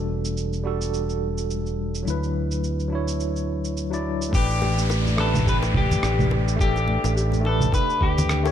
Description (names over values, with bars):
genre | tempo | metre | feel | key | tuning
sunset chillout | 106 BPM | 4/4 | swing 56% on 16ths | unclear | A4 = 442 Hz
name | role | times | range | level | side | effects
tine electric piano | accompaniment | 0.0-8.5 s | F#3 to D5 | -27 LUFS | moving between left 4 dB and right 7 dB | medium stereo tremolo, auto-pan, digital delay
fretless electric bass | bass | 0.0-8.5 s | E1 to D2 | -24 LUFS | equal | ensemble chorus
electronic shaker, rim click and congas | drums | 0.2-8.5 s | none | -28 LUFS | right 1 dB | none
electric guitar at the edge of break-up | melody | 4.3-8.5 s | G4 to B4 | -27 LUFS | left 4 dB | digital delay
Celtic harp | arpeggios | 4.3-8.5 s | D4 to G4 | -33 LUFS | equal | digital delay
electronic kick drum | drums | 4.3-8.1 s | none | -23 LUFS | equal | none
downlifter | sound effects | 4.3-8.5 s | none | -33 LUFS | right 1 dB | none
bongos and congas | percussion | 4.6-8.5 s | none | -30 LUFS | left 2 dB | none
room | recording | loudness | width
light reverb | dark, warm production | -21 LUFS | side -10 dB against mid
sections
0.0-4.3 A section; 4.3-8.5 B section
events
none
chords
0.0 Em11; 2.1 Dmaj9; 4.3 A9sus4